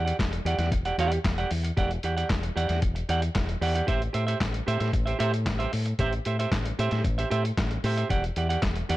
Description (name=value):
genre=disco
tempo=114 BPM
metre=4/4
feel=straight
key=E minor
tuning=A4 = 442 Hz
part: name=clean electric guitar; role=accompaniment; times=0.0-9.0 s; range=G4 to F#5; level=-29 LUFS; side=right 4 dB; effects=none
part: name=fingered electric bass with an envelope filter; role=bass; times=0.0-9.0 s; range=E1 to A2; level=-28 LUFS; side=left 1 dB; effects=none
part: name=lo-fi sampler-style drum kit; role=drums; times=0.1-9.0 s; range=handclaps, hi-hat, kick drum, snare drum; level=-30 LUFS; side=left 1 dB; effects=none
room=little or no reverb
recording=dark, warm production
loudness=-24 LUFS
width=side -16 dB against mid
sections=0.0-9.0 A section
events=none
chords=0.0 Em9; 3.9 Am7; 8.1 Em9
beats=0.19 0.72 1.25 | 1.77 2.30 2.83 3.35 | 3.88 4.41 4.94 5.46 | 5.99 6.52 7.05 7.57 | 8.10 8.63